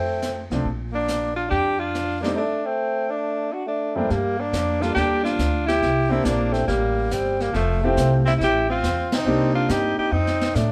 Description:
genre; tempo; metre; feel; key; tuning
jazz, small-group swing and bop; 139 BPM; 4/4; swing 67% on 8ths; Bb major, G minor from 4.1 s; A4 = 442 Hz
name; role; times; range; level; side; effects
breathy tenor saxophone; melody; 0.0-10.7 s; A3 to G4; -26 LUFS; equal; none
clear alto saxophone; second line; 0.0-10.7 s; F3 to E4; -29 LUFS; equal; none
upright bass; bass; 0.0-10.7 s; F1 to A2; -28 LUFS; equal; none
jazz brush drum kit; drums; 0.2-10.7 s; brushed snare drum, hi-hat, kick drum, ride cymbal, snare drum; -33 LUFS; equal; none
warm baby grand piano; accompaniment; 0.5-10.1 s; G2 to A4; -28 LUFS; equal; none
room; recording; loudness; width
moderate studio reverb, RT60 0.7 s; band playing live in one room; -22 LUFS; mono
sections
0.0-4.1 A section; 4.1-10.7 B section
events
band accent 9.0; drum fill 10.1-10.6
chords
0.0 F6; 0.6 Bb; 2.4 N.C.; 3.2 D5; 4.1 Gm7; 5.8 C7; 7.5 Fmaj7; 9.3 Cm7; 10.1 F7

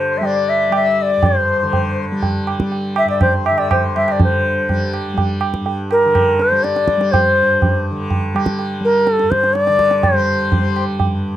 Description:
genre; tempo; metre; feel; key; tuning
indian classical, Hindustani; 123 BPM; 3/4; straight; G raga bhimpalasi; A4 = 440 Hz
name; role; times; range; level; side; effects
bright bansuri; melody; 0.0-10.8 s; Bb4 to E5; -15 LUFS; left 1 dB; none
tanpura; drone; 0.0-11.4 s; G2 to G3; -22 LUFS; equal; none
hand-pumped harmonium; second line; 0.1-4.2, 10.2-10.8 s; C5 to E5; -24 LUFS; left 10 dB; none
tabla; percussion; 0.2-11.2 s; none; -19 LUFS; right 2 dB; none
room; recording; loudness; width
studio reverb; dry, close 1970s-style studio recording; -14 LUFS; side -12 dB against mid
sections
0.0-4.2 A section; 4.2-11.4 B section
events
speeding up 0.0-11.4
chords
none

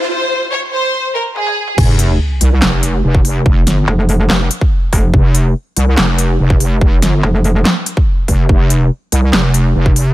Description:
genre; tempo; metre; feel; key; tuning
heavy wobble dubstep; 143 BPM; 4/4; half-time; F minor; A4 = 440 Hz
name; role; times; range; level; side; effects
warm studio violin section; melody; 0.0-1.7 s; Ab4 to Db5; -16 LUFS; equal; tape echo
riser and sub drop; sound effects; 0.0-3.5 s; none; -19 LUFS; equal; none
big-room dance drum kit; drums; 1.4-10.0 s; crash cymbal, handclaps, hi-hat, snare drum, toms; -17 LUFS; equal; overdrive, high-pass filter on hats, high-pass filter on snare, high-pass filter on toms, high-pass filter on cymbals
wobble bass; bass; 1.8-10.1 s; F1 to C2; -12 LUFS; equal; chorus, overdrive
electronic kick drum; drums; 1.8-9.9 s; none; -12 LUFS; equal; overdrive
metallic wobble bass; bass; 3.9-7.6 s; F1; -11 LUFS; equal; chorus, overdrive
room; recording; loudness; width
digital ambience; high-pass filter; -10 LUFS; side -16 dB against mid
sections
0.0-1.8 A section; 1.8-10.1 B section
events
build-up 0.0-1.8; drum fill 1.4-1.8; drop 1.8-10.1; impact 1.8-3.5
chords
none

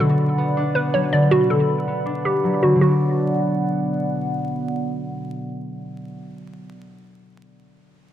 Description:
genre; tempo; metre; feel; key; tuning
hip hop; 160 BPM; 4/4; half-time; B minor; A4 = 440 Hz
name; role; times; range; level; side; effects
hollow square pluck; melody; 0.0-3.9 s; F#4 to D5; -21 LUFS; right 1 dB; chorus, low-pass filter, digital delay
concert harp; accompaniment; 0.0-6.7 s; B2 to D4; -21 LUFS; left 1 dB; low-pass filter
dark analog pad; sustained chords; 0.0-5.8 s; B2 to B5; -28 LUFS; right 2 dB; chorus, phaser, low-pass filter
room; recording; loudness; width
light reverb, digital ambience; dark, warm production, vinyl crackle; -18 LUFS; side -11 dB against mid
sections
0.0-2.8 A section; 2.8-5.8 B section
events
none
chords
0.0 Bm

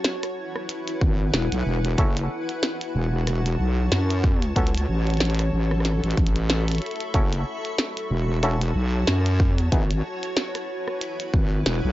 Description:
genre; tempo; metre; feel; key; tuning
glitch hop; 93 BPM; 4/4; swing 57% on 16ths; F# minor; A4 = 440 Hz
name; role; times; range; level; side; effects
glitchy drum kit; drums; 0.0-11.8 s; hi-hat, rim click, snare drum; -26 LUFS; equal; none
granular cloud pad; texture; 0.0-11.9 s; E4 to C#6; -30 LUFS; left 1 dB; built-in reverb, sidechain pumping
wobble bass; bass; 1.0-11.9 s; E1 to F#2; -22 LUFS; equal; chorus
electronic kick drum; drums; 1.0-11.5 s; none; -21 LUFS; equal; none
muted clav; stabs; 2.0-9.8 s; B3 to A4; -28 LUFS; equal; auto-wah, sidechain pumping, analog delay
room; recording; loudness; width
little or no reverb; dry, gritty hardware recording, transformer saturation, cassette tape, nothing above 7.6 kHz; -21 LUFS; side -15 dB against mid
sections
0.0-11.9 A section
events
none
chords
0.0 E; 2.0 F#m7; 4.6 A69; 7.1 F#m7; 9.7 E

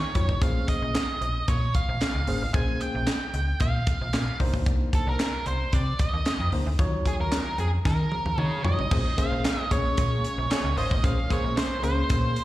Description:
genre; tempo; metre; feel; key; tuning
early-eighties boogie funk; 113 BPM; 4/4; straight; Bb minor; A4 = 441 Hz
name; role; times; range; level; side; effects
octave-fuzz lead guitar; melody; 0.0-12.4 s; Ab4 to Ab5; -30 LUFS; right 2 dB; distortion, slapback echo, tape echo
tine electric piano; accompaniment; 0.1-12.4 s; Gb3 to Db5; -32 LUFS; left 2 dB; overdrive, fast stereo tremolo, slapback echo
tight funk drum kit; drums; 0.1-12.4 s; crash cymbal, handclaps, hi-hat, kick drum, snare drum, toms; -26 LUFS; equal; none
slap-like FM bass; bass; 0.2-12.3 s; Ab1 to Eb3; -26 LUFS; equal; none
warm analog pad; sustained chords; 8.9-12.4 s; Ab3 to Db4; -36 LUFS; equal; chorus, tremolo
mellow horn section; second line; 10.5-10.9 s; F3 to C5; -34 LUFS; left 1 dB; slapback echo
room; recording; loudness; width
little or no reverb; live gig heard through the venue's PA, recital hall reverb; -23 LUFS; side -15 dB against mid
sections
0.0-8.9 A section; 8.9-12.4 B section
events
drum fill 7.9-8.9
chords
0.4 Bbm9; 4.4 Cm9; 6.8 Ebm9; 8.9 Bbm9

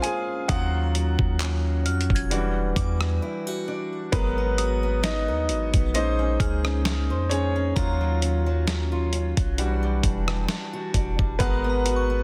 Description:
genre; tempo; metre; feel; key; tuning
contemporary R&B; 66 BPM; 4/4; swing 54% on 16ths; G# dorian; A4 = 441 Hz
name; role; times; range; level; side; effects
warm concert grand piano; accompaniment; 0.0-12.2 s; F#3 to G#5; -31 LUFS; equal; none
fingerpicked acoustic archtop guitar; arpeggios; 0.0-12.2 s; D#3 to B#4; -33 LUFS; equal; tape echo
dusty soul sampler-style drum kit; drums; 0.0-12.1 s; handclaps, hi-hat, kick drum, rim click, snare drum; -28 LUFS; equal; none
warm 808-style bass; bass; 0.5-12.2 s; E1 to E#2; -27 LUFS; equal; none
glassy synth bell; texture; 0.5-12.2 s; F#5 to G#6; -41 LUFS; equal; chorus, tape echo
room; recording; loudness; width
light reverb; dense, heavily limited modern master; -24 LUFS; mono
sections
0.0-4.1 A section; 4.1-12.2 B section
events
grand piano solo 0.0-4.1, 4.1-12.2; break 3.2-4.1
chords
0.5 D#m9; 2.3 Em9; 4.1 G#m9; 5.9 A#m9; 7.8 D#m9; 9.6 Em9; 11.4 G#m9

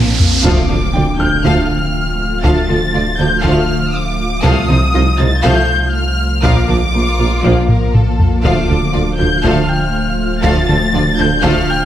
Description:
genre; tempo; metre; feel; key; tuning
cinematic, hybrid orchestral and electronic film score; 120 BPM; 4/4; straight; D minor; A4 = 443 Hz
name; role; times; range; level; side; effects
warm symphonic violin section; melody; 0.0-11.8 s; F5 to A6; -20 LUFS; left 2 dB; none
warm symphonic violin section; second line; 0.0-11.7 s; D4 to F5; -23 LUFS; left 2 dB; none
warm symphonic viola section; accompaniment; 0.0-11.7 s; F3 to F4; -22 LUFS; equal; none
dark French horn section; sustained chords; 0.0-11.6 s; C4 to F4; -32 LUFS; left 4 dB; none
ethereal airy pad; sustained chords; 0.0-11.8 s; F3 to A5; -22 LUFS; equal; ensemble chorus, built-in reverb
dark symphonic cello section; bass; 0.0-11.5 s; Bb2 to D3; -23 LUFS; right 2 dB; none
pure sine sub bass; bass; 0.0-11.8 s; D1 to C2; -20 LUFS; equal; none
warm symphonic double bass section; bass; 0.0-11.5 s; Bb1 to D2; -21 LUFS; right 2 dB; none
riser and impact; sound effects; 0.0-2.4 s; none; -20 LUFS; right 1 dB; none
bright concert grand piano; texture; 0.0-4.5, 9.7-11.8 s; E4 to A6; -25 LUFS; left 1 dB; digital delay
taiko ensemble; drums; 0.2-11.8 s; none; -17 LUFS; equal; none
dark trombone section; sustained chords; 0.4-11.6 s; F3 to Bb3; -27 LUFS; right 1 dB; none
harp-like synth pluck; arpeggios; 0.4-11.6 s; D3 to Bb4; -23 LUFS; right 1 dB; chorus, phaser, digital delay
clear tuba; bass; 0.4-11.5 s; Bb1 to D2; -23 LUFS; right 2 dB; none
room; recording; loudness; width
moderate scoring stage reverb, RT60 1.6 s; none; -11 LUFS; side -11 dB against mid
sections
0.4-11.8 A section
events
drum fill 0.0-0.4, 7.7-8.4; riser 0.0-0.4; impact 0.4-2.4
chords
0.4 Dm; 4.4 F7/C; 6.4 Bb; 8.4 Dm

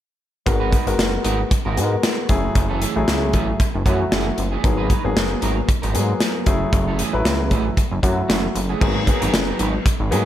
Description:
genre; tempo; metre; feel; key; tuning
early-eighties boogie funk; 115 BPM; 4/4; swing 56% on 16ths; G# phrygian; A4 = 440 Hz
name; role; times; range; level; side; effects
warm grand piano; accompaniment; 0.5-10.3 s; F#3 to B4; -24 LUFS; left 3 dB; none
electric guitar at the edge of break-up; riff; 0.5-10.3 s; E3 to B4; -28 LUFS; right 6 dB; wide subtle chorus
chorused synth bass; bass; 0.5-10.3 s; F#1 to G#2; -22 LUFS; equal; none
modern studio drum kit; drums; 0.5-10.3 s; crash cymbal, hi-hat, kick drum, snare drum; -20 LUFS; equal; none
room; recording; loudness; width
studio reverb; none; -17 LUFS; side -12 dB against mid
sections
0.5-8.8 A section; 8.8-10.3 B section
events
none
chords
0.5 G#m9; 2.3 F#m9; 4.6 G#m9; 6.5 F#m9; 8.8 G#m9

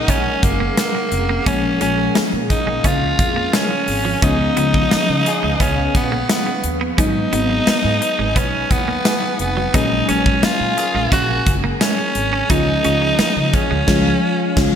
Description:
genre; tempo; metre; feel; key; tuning
1980s-style pop; 87 BPM; 4/4; straight; Db mixolydian; A4 = 443 Hz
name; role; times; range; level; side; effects
breathy tenor saxophone; melody; 0.0-14.8 s; Bb3 to Gb4; -20 LUFS; right 1 dB; digital delay
FM electric piano with soft pad layer; accompaniment; 0.0-14.8 s; F3 to F4; -22 LUFS; left 2 dB; chorus
ethereal airy pad; sustained chords; 0.0-14.8 s; Db4 to Ab5; -27 LUFS; left 1 dB; ensemble chorus, built-in reverb, tremolo
upright bass; bass; 0.0-14.8 s; F1 to Db3; -23 LUFS; equal; none
clean electric guitar; riff; 0.1-13.8 s; F3 to Eb4; -27 LUFS; right 6 dB; lush chorus
gated 80s drum kit; drums; 0.1-14.8 s; crash cymbal, hi-hat, kick drum, snare drum, tambourine; -19 LUFS; equal; gated reverb
cowbell; percussion; 0.1-13.3 s; none; -37 LUFS; left 4 dB; none
clear horn section; stabs; 4.2-5.5, 9.7-11.0 s; Bb3 to Ab4; -31 LUFS; left 3 dB; none
room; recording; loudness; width
moderate lush hall reverb, RT60 2.2 s; bright 1980s-style digital production; -15 LUFS; side -8 dB against mid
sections
0.0-14.8 A section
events
band accent 13.9-14.8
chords
0.0 Gbadd9; 1.5 Bbm7; 4.2 Db7; 7.0 Abm7; 9.7 Gbadd9/Bb; 12.5 Db

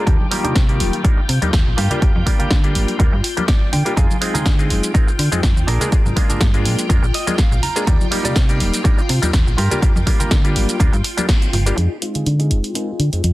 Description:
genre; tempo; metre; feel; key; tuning
filtered disco house; 123 BPM; 4/4; swing 54% on 16ths; F dorian; A4 = 440 Hz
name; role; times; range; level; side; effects
overdriven clav; accompaniment; 0.0-13.2 s; Eb3 to D5; -24 LUFS; equal; phaser, sidechain pumping, low-pass filter
phased string machine; sustained chords; 0.0-13.3 s; F4 to G5; -28 LUFS; left 2 dB; ensemble chorus, phaser, vintage 12-bit sampler grit, sidechain pumping, low-pass filter
direct-recorded clean electric guitar; riff; 0.0-13.3 s; Bb3 to Bb5; -27 LUFS; right 3 dB; vintage 12-bit sampler grit, sidechain pumping, low-pass filter
slap-like FM bass; bass; 0.1-13.3 s; Eb1 to D3; -19 LUFS; equal; sidechain pumping, low-pass filter
electronic kick drum; drums; 0.1-11.4 s; none; -16 LUFS; equal; none
punchy analog drum machine; drums; 0.1-13.3 s; hi-hat, shaker, snare drum; -23 LUFS; equal; sidechain pumping on hats, sidechain pumping on perc
maracas and congas; percussion; 0.1-11.8 s; none; -28 LUFS; left 2 dB; sidechain pumping on perc, low-pass filter on perc
bright horn section; melody; 12.0-12.2 s; F4; -36 LUFS; left 5 dB; none
room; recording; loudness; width
little or no reverb; dense, heavily limited modern master; -14 LUFS; side -17 dB against mid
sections
0.0-11.8 A section; 11.8-13.3 B section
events
clean electric guitar fill 3.2-4.0, 6.9-7.9; band accent 11.3; filter sweep 11.8-13.3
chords
0.1 Ebmaj7; 1.8 Gm7; 4.0 Fm7; 5.7 Bb7; 7.9 Ebmaj7; 9.6 Gm7; 11.8 Fm7

